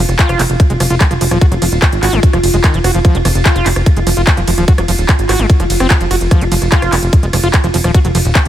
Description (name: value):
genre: psychedelic trance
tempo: 147 BPM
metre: 4/4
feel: straight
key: F phrygian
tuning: A4 = 438 Hz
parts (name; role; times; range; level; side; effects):
- pulsing gated texture; sustained chords; 0.0-8.5 s; F4; -19 LUFS; right 3 dB; chorus, built-in reverb, sidechain pumping
- plucky analog bass; bass; 0.0-8.5 s; Eb1 to Ab1; -15 LUFS; equal; none
- techno drum kit; drums; 0.1-8.5 s; handclaps, hi-hat, ride cymbal, rim click; -17 LUFS; equal; overdrive
- overdriven acid bass; riff; 0.2-8.4 s; Eb3 to Gb4; -19 LUFS; equal; auto-pan, sidechain pumping, tape echo
- electronic kick drum; drums; 0.2-8.4 s; none; -10 LUFS; equal; none
room: little or no reverb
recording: none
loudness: -9 LUFS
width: side -11 dB against mid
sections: 0.0-8.5 A section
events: none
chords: 0.0 F5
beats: 0.19 0.60 1.01 | 1.41 1.82 2.23 2.64 | 3.05 3.46 3.86 4.27 | 4.68 5.09 5.50 5.90 | 6.31 6.72 7.13 7.54 | 7.95 8.35